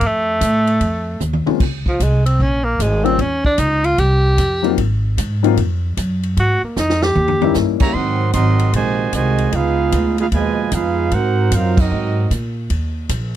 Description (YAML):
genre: jazz, big band swing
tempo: 151 BPM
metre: 4/4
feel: swing 65% on 8ths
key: Ab major from 8.0 s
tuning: A4 = 440 Hz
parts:
  - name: breathy tenor saxophone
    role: melody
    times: 0.0-7.6 s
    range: F3 to G4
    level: -18 LUFS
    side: right 1 dB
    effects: none
  - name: upright bass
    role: bass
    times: 0.0-13.4 s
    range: Ab1 to Bb2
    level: -18 LUFS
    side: equal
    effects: none
  - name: swinging big-band drum kit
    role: drums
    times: 0.0-13.2 s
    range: crash cymbal, hi-hat, kick drum, ride cymbal, snare drum, toms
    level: -21 LUFS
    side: equal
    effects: none
  - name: warm baby grand piano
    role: accompaniment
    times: 1.5-7.9 s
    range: Gb3 to F4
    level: -17 LUFS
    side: left 22 dB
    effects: none
  - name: warm trumpet section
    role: melody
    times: 7.8-12.3 s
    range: C4 to C6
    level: -22 LUFS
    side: right 3 dB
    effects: none
  - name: warm trombone section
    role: second line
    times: 7.8-12.3 s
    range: Cb3 to Gb4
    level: -20 LUFS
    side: right 8 dB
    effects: none
room: little or no reverb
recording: dry, close 1970s-style studio recording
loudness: -14 LUFS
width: side -12 dB against mid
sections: 0.0-8.0 A section; 8.0-13.4 B section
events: tenor saxophone solo 0.0-8.0; drum fill 1.2-1.6, 6.8-7.6; band accent 11.7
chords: 0.0 F7; 1.6 Bbm7; 3.2 Eb13; 4.8 Ab7(no3); 7.2 Eb7b9; 8.0 Ab9; 9.5 Db9; 11.1 Ab13; 12.7 Eb5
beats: | 0.02 0.41 0.81 1.21 | 1.61 2.00 2.40 2.80 | 3.19 3.59 3.99 4.39 | 4.78 5.18 5.58 5.97 | 6.37 6.76 7.16 7.56 | 7.95 8.35 8.74 9.14 | 9.54 9.93 10.33 10.72 | 11.12 11.51 11.91 12.30 | 12.70 13.09